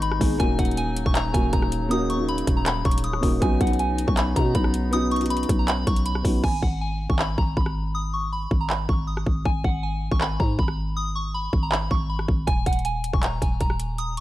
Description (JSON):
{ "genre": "hip hop, trap", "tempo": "159 BPM", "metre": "4/4", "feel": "half-time", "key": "unclear", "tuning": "A4 = 440 Hz", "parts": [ { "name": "soft synth bell", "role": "melody", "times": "0.0-14.2 s", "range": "F#5 to D#6", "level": "-29 LUFS", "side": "equal", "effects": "chorus, phaser" }, { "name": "dark concert grand piano", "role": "accompaniment", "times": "0.0-6.5 s", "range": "G#3 to G#4", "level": "-26 LUFS", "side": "equal", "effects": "none" }, { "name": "clear woodwind section", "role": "sustained chords", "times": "0.0-6.4 s", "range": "B2 to D#4", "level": "-34 LUFS", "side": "left 2 dB", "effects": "none" }, { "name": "growling 808-style bass", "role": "bass", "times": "0.0-14.2 s", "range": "D#1 to B2", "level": "-26 LUFS", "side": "equal", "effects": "none" }, { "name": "trap drum kit", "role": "drums", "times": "0.0-14.2 s", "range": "crash cymbal, handclaps, hi-hat, kick drum, rim click", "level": "-24 LUFS", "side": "equal", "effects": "none" } ], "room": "little or no reverb", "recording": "none", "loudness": "-21 LUFS", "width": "side -15 dB against mid", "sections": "0.0-6.4 A section; 6.4-14.2 B section", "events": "break 6.4-12.5", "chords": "0.4 D#m7; 3.4 Badd9; 6.4 G#m; 12.5 D#5" }